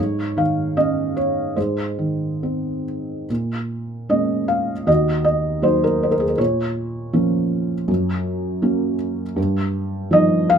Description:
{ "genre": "classical, lyrical solo piano", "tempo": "67-83 BPM", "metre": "4/4", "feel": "rubato", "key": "Bb minor from 3.3 s", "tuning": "A4 = 437 Hz", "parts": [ { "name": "felt-muted upright piano", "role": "solo", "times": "0.0-10.6 s", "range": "Eb2 to F5", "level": "-18 LUFS", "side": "right 1 dB", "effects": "none" } ], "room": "little or no reverb", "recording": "close, detailed microphones", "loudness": "-18 LUFS", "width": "side -7 dB against mid", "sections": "0.0-3.3 A section; 3.3-10.6 B section", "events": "none", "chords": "0.0 Absus4; 1.6 Ab; 3.3 Bbm7; 4.9 Ebm; 6.4 Bbm; 7.9 Gb; 9.4 Ebadd9/G" }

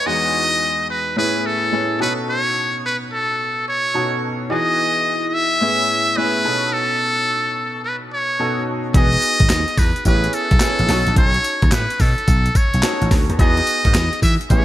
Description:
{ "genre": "R&B, new jack swing", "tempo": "108 BPM", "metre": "4/4", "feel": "swing 65% on 16ths", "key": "E major", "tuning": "A4 = 440 Hz", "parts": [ { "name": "trumpet with metal mute", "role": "melody", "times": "0.0-14.6 s", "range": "A4 to E5", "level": "-19 LUFS", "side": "equal", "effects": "none" }, { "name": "clear baby grand piano", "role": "accompaniment", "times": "0.0-14.6 s", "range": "E2 to B4", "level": "-24 LUFS", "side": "equal", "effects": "analog chorus" }, { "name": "vintage slap bass", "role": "bass", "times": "8.9-14.6 s", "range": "E1 to E3", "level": "-19 LUFS", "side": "equal", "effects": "none" }, { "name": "breakbeat sampler-style drum kit", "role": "drums", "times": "8.9-14.6 s", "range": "handclaps, hi-hat, kick drum, snare drum, tambourine", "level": "-17 LUFS", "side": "equal", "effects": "none" } ], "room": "light reverb, digital ambience", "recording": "bright 1980s-style digital production", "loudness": "-16 LUFS", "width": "side -13 dB against mid", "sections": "0.1-14.6 A section", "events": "none", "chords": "0.1 Emaj7; 1.2 Amaj7; 2.0 B7; 4.5 Emaj7; 5.6 Amaj7; 6.4 B7; 8.9 Emaj7; 10.1 Amaj7; 10.9 B7; 13.4 Emaj7" }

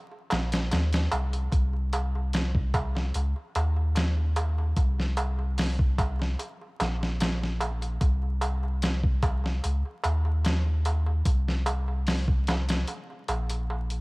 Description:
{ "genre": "trip hop", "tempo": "74 BPM", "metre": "4/4", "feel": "straight", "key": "C phrygian", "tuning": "A4 = 439 Hz", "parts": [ { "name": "darbuka", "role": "percussion", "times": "0.1-14.0 s", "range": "none", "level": "-35 LUFS", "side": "right 2 dB", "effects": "none" }, { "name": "soft dub sub bass", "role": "bass", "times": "0.3-14.0 s", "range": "Bb1 to Eb2", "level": "-26 LUFS", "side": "equal", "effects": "tube saturation" }, { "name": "dusty soul sampler-style drum kit", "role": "drums", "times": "0.3-14.0 s", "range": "hi-hat, kick drum, snare drum", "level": "-28 LUFS", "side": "equal", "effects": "small room ambience, cassette tape" } ], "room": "little or no reverb", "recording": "home recording on cassette, vinyl crackle", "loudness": "-25 LUFS", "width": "side -25 dB against mid", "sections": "0.0-14.0 A section", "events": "break 12.9-14.0", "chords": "none" }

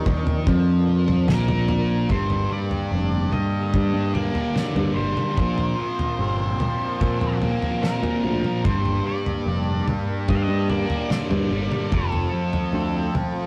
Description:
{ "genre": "psychedelic rock", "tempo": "73 BPM", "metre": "4/4", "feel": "straight", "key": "G minor", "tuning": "A4 = 444 Hz", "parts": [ { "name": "soft string machine", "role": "sustained chords", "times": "0.0-13.5 s", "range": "D3 to D5", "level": "-36 LUFS", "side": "equal", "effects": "none" }, { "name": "fuzz guitar", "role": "riff", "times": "0.0-13.5 s", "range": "F2 to D4", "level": "-27 LUFS", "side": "equal", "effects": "distortion, phaser" }, { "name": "overdriven picked electric bass", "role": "bass", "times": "0.0-13.1 s", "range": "F1 to Bb2", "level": "-26 LUFS", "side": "equal", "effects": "none" }, { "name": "damped 70s drum kit", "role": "drums", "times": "0.1-13.3 s", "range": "kick drum, snare drum, toms", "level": "-28 LUFS", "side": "equal", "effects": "none" }, { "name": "congas", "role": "percussion", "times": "0.1-13.3 s", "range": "none", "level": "barely audible", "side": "none", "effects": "none" }, { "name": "octave-fuzz lead guitar", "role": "melody", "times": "1.3-13.1 s", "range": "A4 to F5", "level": "-33 LUFS", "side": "equal", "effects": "distortion" } ], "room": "moderate studio reverb, RT60 0.5 s", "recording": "rough rehearsal-room recording, warm saturation", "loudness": "-23 LUFS", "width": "mono", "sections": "0.0-2.1 A section; 2.1-13.5 B section", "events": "none", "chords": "0.0 Bbadd9; 2.1 Gm; 5.4 Bbsus2; 8.6 Gm; 11.9 F" }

